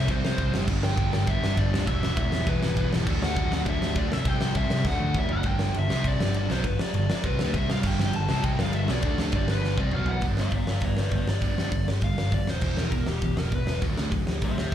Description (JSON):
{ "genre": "punk rock", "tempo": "201 BPM", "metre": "4/4", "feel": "straight", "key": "G major from 5.5 s", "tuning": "A4 = 440 Hz", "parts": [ { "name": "dark smooth lead guitar", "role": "melody", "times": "0.0-14.7 s", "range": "G4 to A5", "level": "-33 LUFS", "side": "left 3 dB", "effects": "overdrive, slapback echo" }, { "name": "crunchy overdriven guitar", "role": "riff", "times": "0.0-14.7 s", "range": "G2 to E4", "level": "-33 LUFS", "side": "right 9 dB", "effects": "slapback echo" }, { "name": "fuzz guitar", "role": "riff", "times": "0.0-5.5, 7.8-10.2 s", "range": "E2 to D4", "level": "-35 LUFS", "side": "left 1 dB", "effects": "none" }, { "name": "sludgy distorted guitar", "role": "riff", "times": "0.0-14.7 s", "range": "E2 to D4", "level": "-35 LUFS", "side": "left 8 dB", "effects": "overdrive, slapback echo" }, { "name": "picked electric bass", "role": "bass", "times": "0.0-14.7 s", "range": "E1 to D2", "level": "-28 LUFS", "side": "equal", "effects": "none" }, { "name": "big rock drum kit", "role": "drums", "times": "0.1-14.7 s", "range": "crash cymbal, hi-hat, kick drum, ride cymbal, snare drum, toms", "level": "-27 LUFS", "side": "equal", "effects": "none" } ], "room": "little or no reverb", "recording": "live gig heard through the venue's PA, club reverb", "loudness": "-23 LUFS", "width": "side -10 dB against mid", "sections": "0.0-5.5 A section; 5.5-10.2 B section; 10.2-14.7 C section", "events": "drum fill 4.9-5.5, 9.6-10.2; lead electric guitar solo 10.2-14.7", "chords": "0.0 C; 0.7 G; 1.9 Em; 3.1 D; 4.1 C; 4.9 D; 5.5 G5; 5.9 C5; 6.2 G; 7.5 C5; 7.8 G5; 8.3 C5; 8.6 G; 9.0 D5; 9.3 G; 9.9 B5; 10.2 G; 12.5 Em; 13.8 D" }